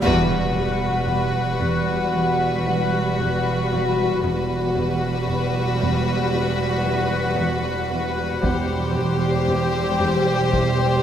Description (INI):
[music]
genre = cinematic, suspense film score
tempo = 57 BPM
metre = 4/4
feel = straight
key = E minor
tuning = A4 = 440 Hz
[part]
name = warm chamber violin section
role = melody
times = 0.0-11.0 s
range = B4 to C5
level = -29 LUFS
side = left 4 dB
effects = none
[part]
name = warm chamber violin section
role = second line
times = 0.0-11.0 s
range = F#4 to G4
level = -27 LUFS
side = left 4 dB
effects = none
[part]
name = warm studio viola section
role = accompaniment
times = 0.0-11.0 s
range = G3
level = -27 LUFS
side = right 2 dB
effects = none
[part]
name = bubbling stepped-filter texture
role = sustained chords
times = 0.4-11.0 s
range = F#4 to C6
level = -26 LUFS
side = left 2 dB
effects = chorus, built-in reverb
[part]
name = warm chamber cello section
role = riff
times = 0.0-10.9 s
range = E2 to E3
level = -28 LUFS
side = right 2 dB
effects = none
[part]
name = dark chamber cello section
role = bass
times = 0.0-11.0 s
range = E2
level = -28 LUFS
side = right 3 dB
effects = none
[part]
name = rich studio double bass section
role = bass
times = 0.0-11.0 s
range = E1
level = -26 LUFS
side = right 3 dB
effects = none
[part]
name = taiko ensemble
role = drums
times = 0.0-2.1, 8.4-11.0 s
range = none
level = -28 LUFS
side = equal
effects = none
[part]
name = impact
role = sound effects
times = 0.0-4.2 s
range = none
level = -32 LUFS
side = equal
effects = none
[sound]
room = moderate scoring stage reverb, RT60 1.9 s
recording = none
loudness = -19 LUFS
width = side -9 dB against mid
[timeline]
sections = 0.0-11.0 A section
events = band accent 0.0-1.1; impact 0.0-4.2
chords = 0.0 Emadd9; 8.4 C/E